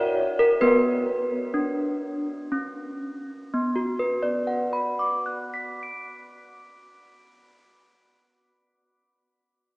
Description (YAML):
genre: classical, tune for handbells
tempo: 57-69 BPM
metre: 3/4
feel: straight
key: B minor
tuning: A4 = 439 Hz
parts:
  - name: desk bells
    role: solo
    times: 0.0-8.1 s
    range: B3 to D7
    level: -23 LUFS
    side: equal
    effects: none
room: wet cathedral reverb, RT60 4.7 s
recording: heard from further back in the room, small speaker sound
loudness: -23 LUFS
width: side -28 dB against mid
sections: 0.0-3.5 A section; 3.5-6.6 B section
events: slowing down 0.0-3.5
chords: 0.0 F#; 0.6 Bm